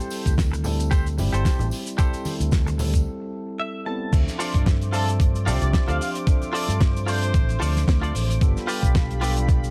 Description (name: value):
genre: nu-disco, nu disco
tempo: 112 BPM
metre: 4/4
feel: swing 55% on 16ths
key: D dorian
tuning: A4 = 441 Hz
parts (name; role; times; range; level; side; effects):
- tine electric piano; accompaniment; 0.0-9.7 s; F3 to E5; -34 LUFS; equal; subtle chorus, sidechain pumping, tape echo
- direct-recorded clean electric guitar; riff; 0.0-9.5 s; F4 to A5; -33 LUFS; equal; lush chorus, tape echo
- damped 70s drum kit; drums; 0.0-9.7 s; cabasa, crash cymbal, hi-hat, snare drum; -33 LUFS; equal; none
- tambourine and congas; percussion; 0.1-3.0 s; none; -36 LUFS; equal; none
- fingered electric bass with an envelope filter; bass; 0.3-9.7 s; G1 to G2; -26 LUFS; equal; none
- electronic kick drum; drums; 0.3-9.6 s; none; -22 LUFS; equal; none
- lush unison pad; sustained chords; 4.1-9.7 s; F4 to D6; -37 LUFS; equal; chorus, sidechain pumping
- muted trumpet section; melody; 4.9-7.6 s; A4 to F5; -35 LUFS; equal; tape echo
room: small room ambience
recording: none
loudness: -22 LUFS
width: mono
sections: 0.0-4.1 A section; 4.1-9.7 B section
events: break 3.1-4.1; clean electric guitar fill 3.3-4.1; drop 4.1-9.7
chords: 0.0 Am7; 4.1 Dm7; 8.4 G7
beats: 0.38 0.92 1.45 | 1.99 2.52 3.06 3.60 | 4.13 4.67 5.20 5.74 | 6.27 6.81 7.34 7.88 | 8.42 8.95 9.49